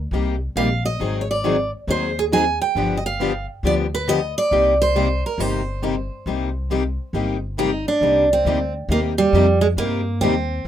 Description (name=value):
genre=acoustic string swing (jazz manouche)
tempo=137 BPM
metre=4/4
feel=swing 63% on 8ths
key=C minor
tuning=A4 = 441 Hz
part: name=upright bass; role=bass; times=0.0-10.7 s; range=G1 to G2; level=-24 LUFS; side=equal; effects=none
part: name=picked plugged-in steel-string acoustic guitar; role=accompaniment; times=0.1-10.3 s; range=C3 to Ab4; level=-28 LUFS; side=right 6 dB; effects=none
part: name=picked steel-string acoustic guitar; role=accompaniment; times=0.1-10.3 s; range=C3 to Ab4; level=-24 LUFS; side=left 7 dB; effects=none
part: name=picked steel-string acoustic guitar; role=melody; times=0.6-10.7 s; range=G3 to Ab5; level=-20 LUFS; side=right 3 dB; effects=none
room=little or no reverb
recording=rough home demo mix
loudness=-18 LUFS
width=side -10 dB against mid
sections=0.0-8.0 A section; 8.0-10.7 A section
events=none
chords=0.0 Cm7; 1.0 Ab7; 2.8 G7; 4.5 Cm7; 8.0 Cm9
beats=0.12 0.56 | 1.00 1.44 1.87 2.31 | 2.75 3.19 3.63 4.07 | 4.51 4.95 5.38 5.83 | 6.26 6.70 7.14 7.58 | 8.02 8.46 8.90 9.34 | 9.78 10.21 10.65